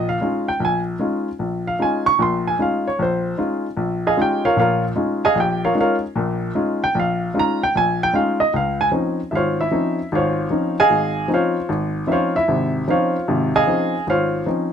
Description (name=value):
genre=jazz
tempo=152 BPM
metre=4/4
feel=swing 65% on 8ths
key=Eb mixolydian, Db major from 8.5 s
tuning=A4 = 440 Hz
part: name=warm baby grand piano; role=solo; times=0.0-14.7 s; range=Ab1 to Db6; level=-17 LUFS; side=equal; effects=none
room=light reverb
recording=close, detailed microphones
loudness=-17 LUFS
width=side -8 dB against mid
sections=0.0-8.5 A section; 8.5-14.7 A section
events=none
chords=0.0 Eb9sus4; 8.5 Dbmaj9